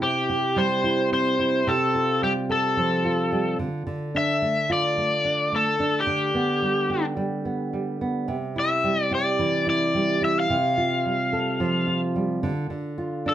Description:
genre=pop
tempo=109 BPM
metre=4/4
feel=swing 60% on 16ths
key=C major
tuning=A4 = 439 Hz
part: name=overdriven slide guitar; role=melody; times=0.0-13.3 s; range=G4 to F5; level=-23 LUFS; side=left 2 dB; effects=none
part: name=nylon-string guitar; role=accompaniment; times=0.0-13.3 s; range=C3 to A4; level=-25 LUFS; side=right 2 dB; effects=none
room=moderate studio reverb, RT60 0.5 s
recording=band playing live in one room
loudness=-21 LUFS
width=side -11 dB against mid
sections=0.0-13.3 A section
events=none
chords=0.0 C; 1.7 Fadd9/C; 3.6 Dm; 6.1 G/D; 8.3 C; 10.5 Fadd9/C; 12.4 Dm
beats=0.03 0.58 1.13 | 1.68 2.23 2.78 3.33 | 3.88 4.43 4.98 5.53 | 6.08 6.63 7.18 7.74 | 8.29 8.84 9.39 9.94 | 10.49 11.05 11.60 12.15 | 12.70 13.26

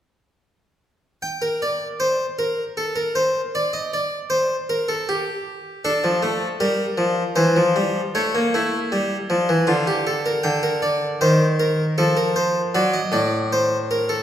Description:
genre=classical, baroque-style two-part invention for harpsichord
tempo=78 BPM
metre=3/4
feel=straight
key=unclear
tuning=A4 = 440 Hz
part: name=harpsichord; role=solo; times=1.2-14.2 s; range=A2 to G5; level=-19 LUFS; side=equal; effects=none
room=wet recital hall reverb, RT60 1.7 s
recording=heard from further back in the room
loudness=-19 LUFS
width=side -10 dB against mid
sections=1.2-14.2 A section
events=none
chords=1.2 N.C.; 5.8 Dm; 7.4 C/E; 8.1 A7; 9.7 Dm; 10.4 Gm/D (rootless); 12.0 F; 12.7 D7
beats=| 1.23 2.01 2.78 | 3.55 4.32 5.08 | 5.85 6.61 7.37 | 8.14 8.90 9.66 | 10.43 11.19 11.96 | 12.74 13.51

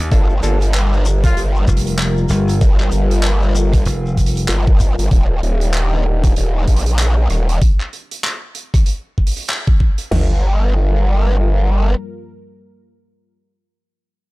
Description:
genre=glitch hop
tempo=96 BPM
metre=4/4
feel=swing 59% on 16ths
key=G minor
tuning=A4 = 439 Hz
part: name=dark analog pad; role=sustained chords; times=0.0-13.4 s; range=G3 to Bb4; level=-26 LUFS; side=left 2 dB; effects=chorus, sidechain pumping
part: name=slap bass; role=bass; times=0.0-4.5 s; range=F1 to G1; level=-17 LUFS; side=equal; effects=none
part: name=mellow clav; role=stabs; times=0.1-0.6 s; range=Bb3 to A4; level=-26 LUFS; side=equal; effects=sidechain pumping, tape echo
part: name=growl bass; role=bass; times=0.1-11.9 s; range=Eb1 to Bb1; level=-15 LUFS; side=equal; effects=chorus
part: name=dubstep drum kit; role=drums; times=0.1-10.3 s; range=crash cymbal, kick drum, snare drum, toms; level=-14 LUFS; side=equal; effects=overdrive
part: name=loose indie drum kit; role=drums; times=0.1-10.1 s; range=handclaps, hi-hat, rim click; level=-25 LUFS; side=right 1 dB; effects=none
part: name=shekere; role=percussion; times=0.1-5.1 s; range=none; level=-33 LUFS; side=left 4 dB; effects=none
part: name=warm trumpet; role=melody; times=1.2-1.4 s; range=F4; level=-30 LUFS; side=left 2 dB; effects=tape echo
room=small room reverb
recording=dry, gritty hardware recording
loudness=-13 LUFS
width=side -21 dB against mid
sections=0.0-10.1 A section; 10.1-12.6 B section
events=drop 0.0-10.1; band accent 9.5-9.8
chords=0.1 Gm7; 5.1 Ebmaj7; 10.1 Gm7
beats=| 0.11 0.74 1.36 1.99 | 2.61 3.24 3.86 4.49 | 5.11 5.74 6.36 6.99 | 7.61 8.24 8.86 9.49 | 10.11 10.74 11.36 11.99

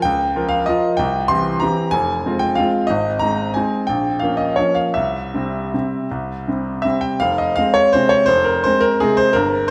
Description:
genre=classical, piano waltz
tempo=149-201 BPM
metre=3/4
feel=rubato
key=F minor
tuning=A4 = 444 Hz
part: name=clear baby grand piano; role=solo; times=0.0-9.7 s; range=F1 to C6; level=-18 LUFS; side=equal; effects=none
room=wet scoring stage reverb, RT60 1.9 s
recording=none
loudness=-18 LUFS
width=mono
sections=0.0-7.2 A section; 7.2-9.7 B section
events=none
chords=0.0 Bbm/Db; 1.0 C; 1.9 Fm; 2.9 Ab; 3.9 Bbm; 4.9 C; 7.2 Fm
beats=| 0.04 0.35 0.67 | 0.98 1.29 1.62 | 1.94 2.26 2.58 | 2.90 3.21 3.55 | 3.88 4.21 4.57 | 4.94 5.33 5.73 | 6.12 6.48 6.85 | 7.21 7.58 7.94 | 8.29 8.65 9.01 | 9.35 9.69

